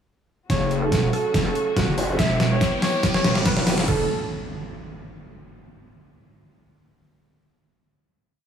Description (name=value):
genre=heavy wobble dubstep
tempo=142 BPM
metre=4/4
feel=half-time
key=F# phrygian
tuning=A4 = 435 Hz
part: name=clear baby grand piano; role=melody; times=0.5-4.0 s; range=F#4 to E5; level=-26 LUFS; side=right 2 dB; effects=low-pass filter, tape echo
part: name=rich studio string section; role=sustained chords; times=0.5-4.1 s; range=C#3 to A4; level=-30 LUFS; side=left 1 dB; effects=sidechain pumping
part: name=wobble bass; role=bass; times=0.5-4.1 s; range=E1 to F#1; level=-23 LUFS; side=right 1 dB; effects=chorus, overdrive
part: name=dubstep drum kit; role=drums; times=0.5-4.0 s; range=crash cymbal, hi-hat, snare drum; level=-24 LUFS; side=left 1 dB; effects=overdrive
part: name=electronic kick drum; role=drums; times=0.5-4.0 s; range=none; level=-26 LUFS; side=right 1 dB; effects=overdrive
part: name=riser and impact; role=sound effects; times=1.2-5.6 s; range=none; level=-33 LUFS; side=right 1 dB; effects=none
part: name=formant-sweep wobble bass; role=bass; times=2.0-3.9 s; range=E1 to F#1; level=-24 LUFS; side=equal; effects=chorus, overdrive
room=moderate digital room reverb, RT60 1.1 s, digital ambience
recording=studio ambience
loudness=-19 LUFS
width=side -8 dB against mid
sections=0.5-3.9 build; 3.9-5.6 final chord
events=build-up 0.5-3.9; drum fill 0.5-3.9; filter sweep on grand piano 0.5-3.9; riser 1.2-3.9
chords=0.5 F#m; 2.2 Em; 3.9 F#m